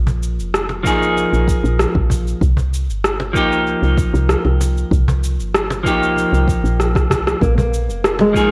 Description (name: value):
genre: organic downtempo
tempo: 96 BPM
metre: 4/4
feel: straight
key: unclear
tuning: A4 = 441 Hz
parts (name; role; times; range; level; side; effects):
- semi-hollow electric guitar; accompaniment; 0.0-8.5 s; F3 to Ab4; -22 LUFS; equal; spring reverb, sidechain pumping, digital delay
- woody FM bass; bass; 0.0-8.5 s; F1 to C2; -21 LUFS; equal; sidechain pumping
- electronic cabasa and rim click; drums; 0.1-8.5 s; none; -22 LUFS; equal; overdrive
- cajon; percussion; 0.1-8.3 s; none; -26 LUFS; equal; none
- electronic kick drum; drums; 0.8-8.5 s; none; -21 LUFS; equal; none
- nylon-string guitar; arpeggios; 7.4-8.5 s; Ab3 to Bb3; -19 LUFS; equal; digital delay
room: light reverb, digital ambience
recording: worn, warbling old tape, cassette tape, warbly pitch drift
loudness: -17 LUFS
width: mono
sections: 0.0-8.5 A section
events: drum fill 6.8-7.4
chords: 0.0 Bb5; 2.4 Cm7; 7.4 Bb7(no3)